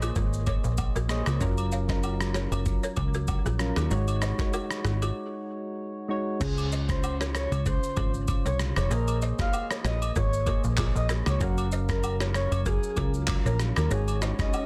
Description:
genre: afrobeats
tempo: 96 BPM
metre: 4/4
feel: swing 55% on 16ths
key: Db major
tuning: A4 = 440 Hz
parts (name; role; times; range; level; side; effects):
- soft electric-piano-like synth keys; accompaniment; 0.0-14.7 s; Db3 to F5; -36 LUFS; equal; chorus
- balafon; riff; 0.0-14.3 s; F4 to F5; -40 LUFS; equal; tape echo
- plucky analog bass; bass; 0.0-14.3 s; F1 to Eb2; -30 LUFS; equal; none
- dusty soul sampler-style drum kit; drums; 0.0-14.7 s; crash cymbal, handclaps, kick drum, rim click, shaker; -32 LUFS; equal; soft clipping on snare
- agogo bells and woodblock; percussion; 0.0-14.7 s; none; -42 LUFS; equal; none
- breathy flute-like synth lead; melody; 6.4-14.7 s; Gb4 to F5; -36 LUFS; equal; chorus, tremolo, tape echo
- swell; sound effects; 14.3-14.7 s; none; -44 LUFS; equal; none
room: little or no reverb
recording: dense, heavily limited modern master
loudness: -27 LUFS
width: mono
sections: 0.0-6.4 A section; 6.4-14.7 B section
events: break 5.2-6.4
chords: 0.0 Bbm11; 1.4 Gbmaj7; 3.9 Ab7sus4; 6.4 Dbmaj7; 8.9 Bbm11; 11.4 Gbmaj7; 13.9 Ab7sus4

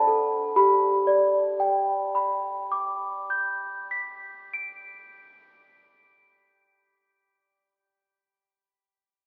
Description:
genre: classical, lullaby for celesta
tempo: 60 BPM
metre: 3/4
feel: straight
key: G major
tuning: A4 = 440 Hz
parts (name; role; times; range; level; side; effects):
- celesta; solo; 0.0-8.8 s; D4 to D7; -25 LUFS; equal; none
room: wet cathedral reverb, RT60 4.8 s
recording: recorded in a church or concert hall, AM radio sound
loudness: -25 LUFS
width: mono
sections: 0.6-6.5 A section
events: none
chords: 0.0 D7; 0.6 G

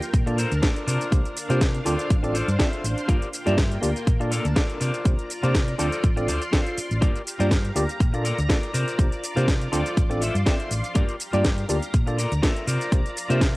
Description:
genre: filtered disco house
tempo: 122 BPM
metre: 4/4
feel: swing 54% on 16ths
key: G dorian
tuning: A4 = 440 Hz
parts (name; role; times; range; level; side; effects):
- string machine, full ensemble; sustained chords; 0.0-13.6 s; Bb3 to C6; -33 LUFS; equal; ensemble chorus, sidechain pumping, cassette tape
- house drum kit; drums; 0.0-13.5 s; hi-hat, shaker, snare drum; -30 LUFS; equal; sidechain pumping on perc, cassette tape, sidechain pumping on hats, sidechain pumping on cymbals
- clean electric guitar; riff; 0.1-13.6 s; F4 to F5; -30 LUFS; left 2 dB; sidechain pumping, cassette tape
- hollow-body short-scale fingered electric bass; bass; 0.1-13.6 s; G1 to C3; -25 LUFS; equal; sidechain pumping
- electronic kick drum; drums; 0.1-13.5 s; none; -21 LUFS; equal; cassette tape
- tine electric piano; accompaniment; 0.3-13.4 s; Bb3 to D5; -28 LUFS; equal; phaser, sidechain pumping, cassette tape
room: digital ambience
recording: home recording on cassette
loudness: -21 LUFS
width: side -21 dB against mid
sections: 0.0-13.6 A section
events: none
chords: 0.1 Bbmaj7; 0.9 C9sus4; 1.9 Dm7; 3.1 Gm7; 4.1 Bbmaj7; 4.8 C9sus4; 5.8 Dm7; 7.0 Gm7; 8.0 Bbmaj7; 8.7 C9sus4; 9.7 Dm7; 11.0 Gm7; 11.9 Bbmaj7; 12.7 C9sus4

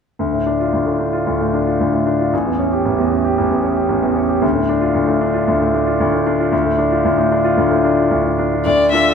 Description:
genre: quick classical-period movement for piano trio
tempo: 114 BPM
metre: 4/4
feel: straight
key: D minor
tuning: A4 = 440 Hz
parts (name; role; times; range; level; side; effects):
- bright concert grand piano; accompaniment; 0.2-9.1 s; A1 to A4; -14 LUFS; equal; none
- rich violin; melody; 8.7-9.1 s; D5 to E5; -13 LUFS; left 2 dB; none
room: wet stone room reverb, RT60 0.9 s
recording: dark, warm production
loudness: -14 LUFS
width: side -6 dB against mid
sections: 0.2-8.7 A section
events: none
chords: 0.2 Dm; 2.3 A7; 4.4 Dm

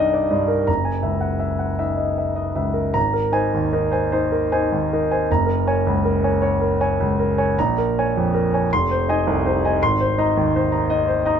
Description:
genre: classical, impressionist solo piano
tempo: 53 BPM (dotted quarters)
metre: 6/8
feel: uneven beats, rubato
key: unclear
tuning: A4 = 440 Hz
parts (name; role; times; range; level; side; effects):
- clear concert grand piano; solo; 0.0-11.4 s; F1 to C6; -18 LUFS; equal; none
room: light reverb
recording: none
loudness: -18 LUFS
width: side -8 dB against mid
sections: 0.0-3.0 A section; 3.0-11.4 B section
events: none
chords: 0.0 Cm7; 0.7 Gb9; 3.0 Abadd9; 5.3 Gbadd9; 7.6 Bbm7; 8.7 Fm7; 9.8 Abadd9

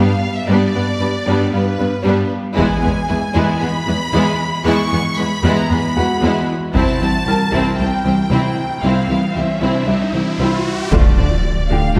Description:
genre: cinematic, hybrid orchestral and electronic film score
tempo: 115 BPM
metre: 4/4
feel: straight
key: unclear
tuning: A4 = 438 Hz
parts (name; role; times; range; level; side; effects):
- rich symphonic violin section; melody; 0.0-12.0 s; B4 to C#6; -26 LUFS; equal; none
- clear symphonic violin section; second line; 0.0-12.0 s; G3 to C5; -26 LUFS; equal; none
- rich symphonic viola section; accompaniment; 0.0-12.0 s; F3 to F4; -24 LUFS; equal; none
- thumb-piano-like synth pluck; arpeggios; 0.0-12.0 s; C3 to D4; -26 LUFS; equal; chorus
- rich studio cello section; bass; 0.0-12.0 s; C2 to D3; -22 LUFS; equal; none
- bright concert grand piano; texture; 0.0-12.0 s; F#4 to B5; -30 LUFS; equal; delay
- taiko ensemble; drums; 2.6-3.6, 6.8-7.8, 10.9-12.0 s; none; -22 LUFS; equal; none
- riser and impact; sound effects; 8.7-12.0 s; none; -28 LUFS; equal; none
- mellow French horn section; sustained chords; 10.9-12.0 s; F3 to D4; -32 LUFS; equal; none
- punchy sub bass; bass; 10.9-12.0 s; D1; -22 LUFS; equal; none
- rich symphonic double bass section; bass; 10.9-12.0 s; D2; -25 LUFS; equal; none
room: wet scoring stage reverb, RT60 1.9 s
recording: heard from further back in the room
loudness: -17 LUFS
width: mono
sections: 0.0-10.9 A section; 10.9-12.0 B section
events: riser 8.7-10.9; impact 10.9-12.0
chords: 0.0 G; 2.6 E; 6.8 C; 10.9 Dm

